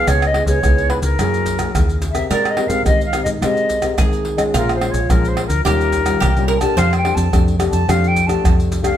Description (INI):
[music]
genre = samba and choro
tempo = 108 BPM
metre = 4/4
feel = straight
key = unclear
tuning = A4 = 440 Hz
[part]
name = concert flute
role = melody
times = 0.0-9.0 s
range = Bb4 to A5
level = -20 LUFS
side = equal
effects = none
[part]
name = nylon-string guitar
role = accompaniment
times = 0.0-9.0 s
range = Ab2 to Bb4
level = -22 LUFS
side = left 4 dB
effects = none
[part]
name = deep dub fingered electric bass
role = bass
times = 0.1-8.9 s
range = Bb1 to Ab2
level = -20 LUFS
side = equal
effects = none
[part]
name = maracas, surdo, pandeiro and tamborim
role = percussion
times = 0.1-9.0 s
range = none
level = -20 LUFS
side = right 1 dB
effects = none
[part]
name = oud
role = second line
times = 2.3-9.0 s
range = F4 to C5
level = -23 LUFS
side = right 3 dB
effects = none
[sound]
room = moderate stone room reverb, RT60 1.1 s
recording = band playing live in one room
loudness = -14 LUFS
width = side -10 dB against mid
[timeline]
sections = 0.0-9.0 A section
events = none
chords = 0.1 Dbm7; 1.2 Gb9; 2.3 Abmaj9; 4.5 Bbm7; 5.7 Eb9; 6.8 F69